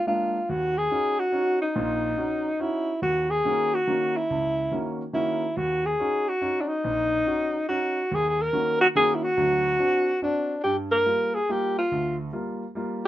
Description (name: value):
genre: jazz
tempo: 142 BPM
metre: 3/4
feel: swing 65% on 8ths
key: Eb phrygian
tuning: A4 = 440 Hz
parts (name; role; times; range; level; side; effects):
- breathy alto saxophone; melody; 0.0-13.1 s; D4 to Bb4; -23 LUFS; equal; none
- clear concert grand piano; accompaniment; 0.1-13.1 s; Bb1 to Gb4; -30 LUFS; right 1 dB; none
room: light reverb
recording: minimal, uncompressed stereo recording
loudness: -22 LUFS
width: side -13 dB against mid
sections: 0.5-10.6 A section; 10.6-13.1 B section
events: none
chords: 0.5 Ebm7; 3.0 Gb/Eb; 5.6 Ebm7; 8.1 Gb/Eb; 9.4 D7; 10.6 Gm7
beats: 0.07 | 0.49 0.91 1.34 | 1.76 2.18 2.60 | 3.02 3.45 3.87 | 4.29 4.71 5.13 | 5.56 5.98 6.40 | 6.83 7.25 7.67 | 8.10 8.52 8.94 | 9.37 9.79 10.21 | 10.64 11.06 11.49 | 11.91 12.34 12.76